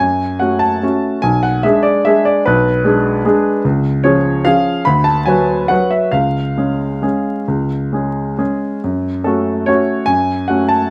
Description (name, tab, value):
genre	classical, piano waltz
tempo	129-156 BPM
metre	3/4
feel	rubato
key	F# minor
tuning	A4 = 439 Hz
part	clear baby grand piano	solo	0.0-10.9 s	B1 to B5	-15 LUFS	equal	none
room	moderate large studio reverb, RT60 1.0 s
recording	vinyl crackle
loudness	-15 LUFS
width	mono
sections	0.0-10.9 A section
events	none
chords	0.0 F#m; 1.2 G#dim/B; 3.6 C#; 4.9 Bm/D; 6.1 C#; 8.8 F#m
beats	| 0.00 0.41 0.82 | 1.23 1.64 2.04 | 2.45 2.84 3.25 | 3.65 4.04 4.46 | 4.87 5.28 5.71 | 6.14 6.58 7.04 | 7.49 7.94 8.40 | 8.84 9.26 9.68 | 10.09 10.49